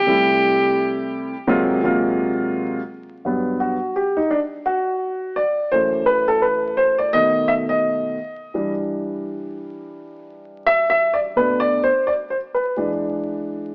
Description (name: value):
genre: hip hop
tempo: 85 BPM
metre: 4/4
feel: swing 60% on 16ths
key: G major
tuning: A4 = 444 Hz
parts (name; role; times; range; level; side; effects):
- breathy tenor saxophone; melody; 0.0-1.1 s; G4; -21 LUFS; equal; tape echo
- dark upright piano; accompaniment; 0.1-13.7 s; F#2 to E5; -21 LUFS; equal; none
room: moderate echo chamber reverb, RT60 2.0 s, studio reverb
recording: vinyl crackle, AM radio sound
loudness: -20 LUFS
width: mono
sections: 0.0-2.9 A section; 2.9-13.7 B section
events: upright piano solo 2.9-13.7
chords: 0.1 Am7; 1.5 Ab13; 2.9 Gmaj7; 5.7 F#m7b5; 7.1 B7; 8.5 Em7; 11.4 Bm7; 12.8 E7